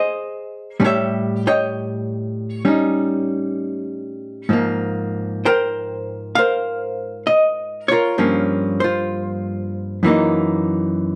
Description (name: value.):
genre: jazz ballad.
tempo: 65 BPM.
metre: 4/4.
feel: swing 66% on 8ths.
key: unclear.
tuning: A4 = 441 Hz.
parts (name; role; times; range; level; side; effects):
archtop guitar, miked and amplified; solo; 0.0-11.2 s; Gb2 to G5; -20 LUFS; equal; none.
room: light reverb.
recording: dark, warm production.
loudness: -20 LUFS.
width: mono.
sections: 0.0-11.2 A section.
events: none.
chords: 0.0 Bb7sus2; 0.8 A7#11; 4.5 Ab69; 8.2 Gm7b5; 10.0 Gb6.